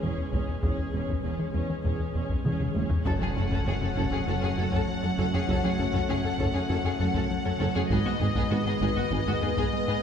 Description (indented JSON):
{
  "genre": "cinematic, hybrid orchestral and electronic film score",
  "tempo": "99 BPM",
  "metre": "4/4",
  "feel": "straight",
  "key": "unclear",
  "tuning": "A4 = 438 Hz",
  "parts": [
    { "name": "rich studio viola section", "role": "accompaniment", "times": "0.0-9.9 s", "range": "B3 to G#4", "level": "-37 LUFS", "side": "equal", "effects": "none" },
    { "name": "warbly tape-like pad", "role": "sustained chords", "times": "0.0-10.0 s", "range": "D#3 to C#5", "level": "-34 LUFS", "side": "right 1 dB", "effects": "chorus, built-in reverb" },
    { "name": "tight sequencer bass", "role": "riff", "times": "0.0-10.0 s", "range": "E2 to G#3", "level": "-31 LUFS", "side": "left 2 dB", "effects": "none" },
    { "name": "dark symphonic cello section", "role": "bass", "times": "0.0-9.9 s", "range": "E2 to G#2", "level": "-34 LUFS", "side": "right 3 dB", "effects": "none" },
    { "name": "rich chamber double bass section", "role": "bass", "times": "0.0-9.5 s", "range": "E1 to G#1", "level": "-36 LUFS", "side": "right 3 dB", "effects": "none" },
    { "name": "taiko ensemble", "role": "drums", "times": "0.3-10.0 s", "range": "none", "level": "-33 LUFS", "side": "equal", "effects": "none" },
    { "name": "warm symphonic violin section", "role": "melody", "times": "3.1-10.0 s", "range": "D#5 to F#5", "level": "-34 LUFS", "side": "left 4 dB", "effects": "none" },
    { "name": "rich studio violin section", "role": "second line", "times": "3.1-9.9 s", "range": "F#4 to A4", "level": "-35 LUFS", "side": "left 3 dB", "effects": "none" },
    { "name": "mellow French horn section", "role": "sustained chords", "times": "3.1-10.0 s", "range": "G#3 to C#4", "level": "-35 LUFS", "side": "left 3 dB", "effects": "none" },
    { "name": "mellow tuba", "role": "bass", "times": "3.1-9.5 s", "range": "F#1 to G#1", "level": "-35 LUFS", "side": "right 2 dB", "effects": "none" },
    { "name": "impact", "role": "sound effects", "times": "3.1-5.5 s", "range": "none", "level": "-37 LUFS", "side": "left 1 dB", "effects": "none" }
  ],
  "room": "wet scoring stage reverb, RT60 1.9 s",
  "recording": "heard from further back in the room",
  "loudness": "-25 LUFS",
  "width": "side -8 dB against mid",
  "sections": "0.0-3.1 A section; 3.1-10.0 B section",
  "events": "drum fill 2.5-3.1; impact 3.1-5.5",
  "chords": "0.0 C#m/E; 3.1 F#m; 7.9 G#m"
}